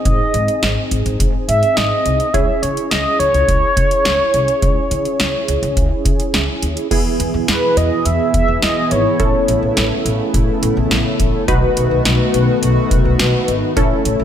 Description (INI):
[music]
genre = synth-pop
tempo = 105 BPM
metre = 4/4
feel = straight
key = C# harmonic minor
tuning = A4 = 440 Hz
[part]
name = mellow horn-like synth lead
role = melody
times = 0.0-9.8 s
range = B4 to E5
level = -17 LUFS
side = equal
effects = chorus
[part]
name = funky polysynth comp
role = accompaniment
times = 0.0-14.2 s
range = B3 to B4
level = -20 LUFS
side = right 1 dB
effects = chorus
[part]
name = upright bass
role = bass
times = 0.1-14.2 s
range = G#1 to C#3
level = -20 LUFS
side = equal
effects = none
[part]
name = electro analog drum machine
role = drums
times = 0.1-14.2 s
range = crash cymbal, hi-hat, kick drum, snare drum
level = -19 LUFS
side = equal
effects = none
[part]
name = chorused pulse-width pad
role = sustained chords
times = 6.9-14.2 s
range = B2 to F#4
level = -21 LUFS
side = left 2 dB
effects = none
[sound]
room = light reverb, digital ambience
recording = none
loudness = -13 LUFS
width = side -9 dB against mid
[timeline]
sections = 0.0-6.9 A section; 6.9-14.2 B section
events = none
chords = 0.0 G#; 2.3 C#m; 6.9 E; 9.2 A; 11.5 B7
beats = | 0.05 0.63 1.20 1.77 | 2.34 2.91 3.48 4.05 | 4.63 5.20 5.77 6.34 | 6.91 7.48 8.05 8.63 | 9.20 9.77 10.34 10.91 | 11.48 12.05 12.63 13.20 | 13.77